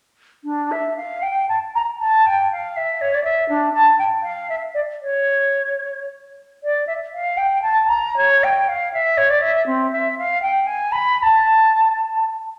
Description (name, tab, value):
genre	classical, baroque-style fantasia for unaccompanied flute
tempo	104-124 BPM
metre	3/4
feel	rubato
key	D minor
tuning	A4 = 440 Hz
part	concert flute	solo	0.4-12.3 s	C4 to B5	-19 LUFS	equal	none
room	wet recital hall reverb, RT60 1.4 s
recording	none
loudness	-19 LUFS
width	mono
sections	0.4-12.6 A section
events	none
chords	none